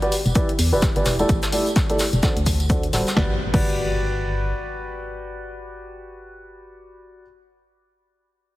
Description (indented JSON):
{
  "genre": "piano house",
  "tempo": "128 BPM",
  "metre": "4/4",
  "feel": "swing 58% on 16ths",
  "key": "G major",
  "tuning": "A4 = 439 Hz",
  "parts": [
    { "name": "clear upright piano", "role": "riff", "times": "0.0-7.2 s", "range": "D3 to F#5", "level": "-25 LUFS", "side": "equal", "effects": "sidechain pumping, low-pass filter, dub echo" },
    { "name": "punchy analog drum machine", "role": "drums", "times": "0.0-3.7 s", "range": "crash cymbal, hi-hat, snare drum", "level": "-30 LUFS", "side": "left 2 dB", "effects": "overdrive" },
    { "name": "shaker and snare drum", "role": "drums", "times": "0.1-3.2 s", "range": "none", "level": "-30 LUFS", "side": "equal", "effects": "high-pass filter on hats, high-pass filter on snare, high-pass filter on perc, high-pass filter on room" },
    { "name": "tambourine", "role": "percussion", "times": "0.1-3.1 s", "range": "none", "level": "-34 LUFS", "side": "right 2 dB", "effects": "none" },
    { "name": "organ-like FM bass", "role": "bass", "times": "0.3-4.5 s", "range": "D1 to E2", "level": "-23 LUFS", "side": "equal", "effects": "sidechain pumping" },
    { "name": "electronic kick drum", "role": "drums", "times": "0.4-3.7 s", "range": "none", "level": "-22 LUFS", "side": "equal", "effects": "overdrive" },
    { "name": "impact", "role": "sound effects", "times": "3.2-6.9 s", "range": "none", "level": "-32 LUFS", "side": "equal", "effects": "none" }
  ],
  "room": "light reverb, small room reverb",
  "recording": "heavily compressed radio sound",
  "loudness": "-18 LUFS",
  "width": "side -17 dB against mid",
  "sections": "0.0-3.2 A section; 3.2-6.9 B section",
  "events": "filter sweep on upright piano 0.0-3.2",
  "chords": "0.1 Em7; 1.3 A7sus4; 2.2 D7; 3.2 Gmaj7"
}